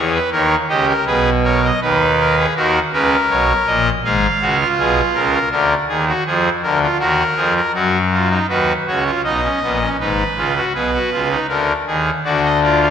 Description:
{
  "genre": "classical, baroque-style 3-part fugue for pipe organ",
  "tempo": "80 BPM",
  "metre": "4/4",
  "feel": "straight",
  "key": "unclear",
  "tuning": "A4 = 439 Hz",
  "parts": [
    { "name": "pipe organ, trumpet", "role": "solo", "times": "0.0-12.9 s", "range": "Ab1 to F5", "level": "-14 LUFS", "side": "equal", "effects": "none" }
  ],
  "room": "wet scoring stage reverb, RT60 1.7 s",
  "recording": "none",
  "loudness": "-14 LUFS",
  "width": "side -8 dB against mid",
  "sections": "0.0-8.5 A section; 8.5-12.9 B section",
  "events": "none",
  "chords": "0.0 D#; 1.1 G#m/B; 2.6 D#m; 4.0 Fdim/Ab; 5.5 A#/D; 7.0 D#m; 8.5 B; 10.0 Fdim/Ab; 11.5 A#/D",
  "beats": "0.33 1.08 1.82 | 2.56 3.30 4.04 4.78 | 5.52 6.26 7.00 7.75 | 8.50 9.25 10.00 10.75 | 11.50 12.25"
}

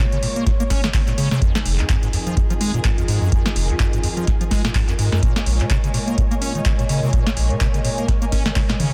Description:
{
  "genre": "acid house",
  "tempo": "126 BPM",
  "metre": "4/4",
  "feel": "swing 57% on 16ths",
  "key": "unclear",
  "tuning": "A4 = 440 Hz",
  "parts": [
    { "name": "muted studio string section", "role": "sustained chords", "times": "0.0-8.9 s", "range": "F2 to Db5", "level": "-31 LUFS", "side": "equal", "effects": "sidechain pumping" },
    { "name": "acid bass, square", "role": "riff", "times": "0.0-8.9 s", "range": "F1 to Db4", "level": "-24 LUFS", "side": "equal", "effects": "subtle chorus" },
    { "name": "booming analog drum machine", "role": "drums", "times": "0.1-8.9 s", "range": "handclaps, hi-hat, snare drum, toms", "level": "-28 LUFS", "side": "equal", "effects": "none" },
    { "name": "electronic kick drum", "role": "drums", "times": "0.5-8.7 s", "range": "none", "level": "-22 LUFS", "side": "equal", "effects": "none" },
    { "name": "ethereal airy pad", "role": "texture", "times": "2.1-8.9 s", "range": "F4 to Ab5", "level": "-34 LUFS", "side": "equal", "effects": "ensemble chorus, built-in reverb, sidechain pumping" }
  ],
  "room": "light reverb",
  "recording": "dense, heavily limited modern master",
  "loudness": "-19 LUFS",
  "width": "mono",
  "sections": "0.0-8.9 A section",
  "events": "drum fill 8.6-8.9",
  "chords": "0.0 Bbm7; 1.4 Fm7; 5.2 Bbm7",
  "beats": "0.46 0.94 | 1.42 1.89 2.37 2.85 | 3.32 3.80 4.27 4.75 | 5.23 5.70 6.18 6.66 | 7.13 7.61 8.08 8.56"
}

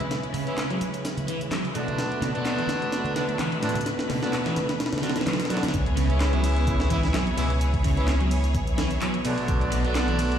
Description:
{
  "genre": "breakbeat, breaks",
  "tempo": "128 BPM",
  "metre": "4/4",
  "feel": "swing 54% on 16ths",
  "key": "C# phrygian",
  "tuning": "A4 = 439 Hz",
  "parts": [
    { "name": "rich symphonic string section", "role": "sustained chords", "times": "0.0-10.4 s", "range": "B2 to D5", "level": "-31 LUFS", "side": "equal", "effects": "sidechain pumping" },
    { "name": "punchy analog drum machine", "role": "drums", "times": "0.0-10.4 s", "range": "handclaps, hi-hat, ride cymbal", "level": "-37 LUFS", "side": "equal", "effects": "none" },
    { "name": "congas and bongos", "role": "percussion", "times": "0.0-5.7 s", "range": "none", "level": "-36 LUFS", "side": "equal", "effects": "none" },
    { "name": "breakbeat sampler-style drum kit", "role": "drums", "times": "0.1-10.3 s", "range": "hi-hat, kick drum, snare drum", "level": "-30 LUFS", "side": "equal", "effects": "none" },
    { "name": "crunchy overdriven guitar", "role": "riff", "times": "0.3-10.2 s", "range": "A2 to C#4", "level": "-30 LUFS", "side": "equal", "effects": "vintage 12-bit sampler grit, low-pass filter, ping-pong delay" },
    { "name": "clear horn section", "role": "stabs", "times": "0.5-10.4 s", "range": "D3 to E4", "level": "-30 LUFS", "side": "right 1 dB", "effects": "low-pass filter, ping-pong delay" },
    { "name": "saturated sub bass", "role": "bass", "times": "5.7-10.4 s", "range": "B1 to C#2", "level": "-24 LUFS", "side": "equal", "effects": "none" }
  ],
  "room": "moderate lush hall reverb, RT60 1.9 s",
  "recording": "played on a big sound system in a bare room, large studio reverb",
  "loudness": "-22 LUFS",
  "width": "side -9 dB against mid",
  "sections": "0.0-5.7 A section; 5.7-10.4 B section",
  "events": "build-up 0.0-5.7; drum fill 0.0-5.7; filter sweep on drum 0.0-5.7; drop 5.7-10.4",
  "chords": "0.0 C#m7; 2.0 Bm7; 5.7 C#m7; 9.5 Bm7",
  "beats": "| 0.11 0.58 1.05 1.52 | 1.99 2.45 2.92 3.39 | 3.86 4.33 4.80 5.27 | 5.74 6.20 6.67 7.14 | 7.61 8.08 8.55 9.02 | 9.48 9.95"
}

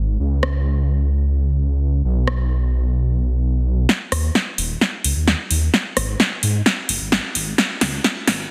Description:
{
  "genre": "EDM, festival progressive house",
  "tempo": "130 BPM",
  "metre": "4/4",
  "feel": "straight",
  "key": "unclear",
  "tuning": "A4 = 442 Hz",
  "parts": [
    { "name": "detuned saw bass", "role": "bass", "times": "0.0-8.5 s", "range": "Eb1 to Ab2", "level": "-21 LUFS", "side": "equal", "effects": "none" },
    { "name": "big-room dance drum kit", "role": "drums", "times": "0.4-8.4 s", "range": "hi-hat, rim click, snare drum", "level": "-21 LUFS", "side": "equal", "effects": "studio reverb" }
  ],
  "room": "light reverb, digital ambience",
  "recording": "dense, heavily limited modern master, high-pass filter",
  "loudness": "-20 LUFS",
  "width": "mono",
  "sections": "0.0-3.9 A section; 3.9-8.5 B section",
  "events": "build-up 3.9-8.5; drum fill 3.9-8.5",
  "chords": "none",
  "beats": "| 0.20 0.66 1.12 1.58 | 2.04 2.51 2.97 3.43 | 3.89 4.35 4.82 5.28 | 5.74 6.20 6.66 7.12 | 7.58 8.04"
}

